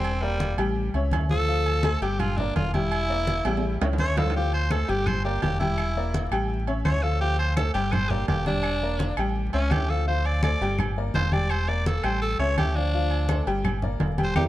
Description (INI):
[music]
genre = latin, salsa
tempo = 168 BPM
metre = 4/4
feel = straight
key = D minor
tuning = A4 = 441 Hz
[part]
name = raspy tenor saxophone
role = melody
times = 0.0-14.4 s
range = G3 to D5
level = -28 LUFS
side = equal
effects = none
[part]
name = bright upright piano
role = accompaniment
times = 0.0-14.5 s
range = F3 to G5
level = -30 LUFS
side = left 3 dB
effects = none
[part]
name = deep dub fingered electric bass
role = bass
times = 0.0-14.5 s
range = E1 to E2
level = -26 LUFS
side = equal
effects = none
[part]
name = agogo bells and timbales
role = percussion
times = 0.0-14.4 s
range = none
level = -33 LUFS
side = right 4 dB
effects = none
[part]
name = congas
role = percussion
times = 0.0-14.4 s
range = none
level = -29 LUFS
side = equal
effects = none
[part]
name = claves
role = percussion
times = 4.7-14.4 s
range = none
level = -40 LUFS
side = left 3 dB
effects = none
[sound]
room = light reverb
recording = dark, warm production, vinyl crackle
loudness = -22 LUFS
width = side -14 dB against mid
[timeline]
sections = 0.0-14.5 A section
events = tenor saxophone solo 0.0-14.5; drum fill 3.5-4.3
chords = 0.1 Em7b5; 0.8 A7; 1.5 Dm7; 2.2 Gm; 2.9 Em7b5; 3.6 A7; 4.3 Dm7; 5.1 Gm; 5.8 Em7b5; 6.5 A7; 7.2 Dm7; 7.9 Gm; 8.6 Em7b5; 9.4 A7; 10.1 Dm7; 10.8 Gm; 11.5 Em7b5; 12.2 A7; 12.9 Dm7; 13.6 Gm